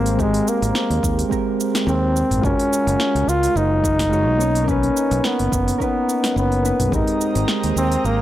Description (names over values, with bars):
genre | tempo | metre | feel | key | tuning
sunset chillout | 107 BPM | 4/4 | swing 55% on 16ths | unclear | A4 = 440 Hz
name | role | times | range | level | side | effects
breathy flugelhorn | melody | 0.0-8.2 s | Ab3 to F4 | -20 LUFS | equal | analog delay
soft electric-piano-like synth keys | accompaniment | 0.0-8.2 s | Ab3 to Db5 | -23 LUFS | moving between left 3 dB and right 6 dB | chorus, auto-pan, tape echo
fingered electric bass | bass | 0.0-8.2 s | Gb1 to Eb2 | -21 LUFS | equal | none
deep house drum kit | drums | 0.1-8.2 s | hi-hat, shaker, snare drum, toms | -26 LUFS | right 1 dB | none
electronic kick drum | drums | 0.2-7.0 s | none | -25 LUFS | equal | none
airy breathy pad | sustained chords | 6.9-8.2 s | Ab3 to Bb5 | -30 LUFS | right 3 dB | chorus
drifting glass-harmonics texture | texture | 7.1-8.2 s | Eb6 | -34 LUFS | right 7 dB | chorus, built-in reverb
room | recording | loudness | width
light reverb, digital ambience | dry, gritty hardware recording | -17 LUFS | side -13 dB against mid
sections
0.0-8.2 A section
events
none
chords
0.0 Abmaj9; 2.4 Gbmaj9; 4.4 Cbmaj9; 6.9 Abmaj9